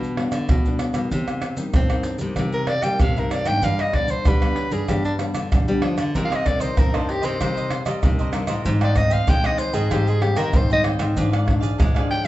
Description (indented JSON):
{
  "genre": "samba and choro",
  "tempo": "96 BPM",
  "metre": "4/4",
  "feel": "straight",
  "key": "C minor",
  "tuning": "A4 = 440 Hz",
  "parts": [
    { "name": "nylon-string guitar", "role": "accompaniment", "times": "0.0-12.3 s", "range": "G2 to Eb4", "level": "-27 LUFS", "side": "left 2 dB", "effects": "none" },
    { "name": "nylon-string guitar", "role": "bass", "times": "0.0-12.3 s", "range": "G2 to C4", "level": "-25 LUFS", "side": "equal", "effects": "none" },
    { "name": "maracas, pandeiro, tamborim and surdo", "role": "percussion", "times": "0.0-12.3 s", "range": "none", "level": "-22 LUFS", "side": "right 1 dB", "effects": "none" },
    { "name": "growling soprano saxophone", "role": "melody", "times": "2.5-12.3 s", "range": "D4 to G5", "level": "-23 LUFS", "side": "equal", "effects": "none" },
    { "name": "cavaquinho", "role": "accompaniment", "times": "6.1-12.3 s", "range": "D4 to G5", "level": "-30 LUFS", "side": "right 2 dB", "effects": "none" }
  ],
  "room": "wet large studio reverb, RT60 0.8 s",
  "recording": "band playing live in one room, nothing above 8.0 kHz",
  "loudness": "-18 LUFS",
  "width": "side -15 dB against mid",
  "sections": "0.0-12.3 A section",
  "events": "soprano saxophone solo 0.0-12.3",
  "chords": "0.0 G/B; 1.1 Cm7; 3.6 G; 6.2 Cm7; 8.7 Abmaj7; 11.2 Ddim/Ab"
}